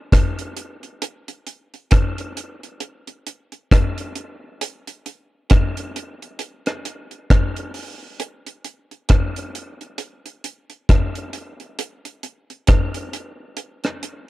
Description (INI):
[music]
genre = reggae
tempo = 67 BPM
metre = 4/4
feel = swing 58% on 16ths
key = none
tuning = none
[part]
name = deep reggae drum kit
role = drums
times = 0.1-14.3 s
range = hi-hat, kick drum, rim click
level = -18 LUFS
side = equal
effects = none
[sound]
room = light reverb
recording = dark, warm production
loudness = -19 LUFS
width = side -18 dB against mid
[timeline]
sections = 0.0-14.3 A section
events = none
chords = none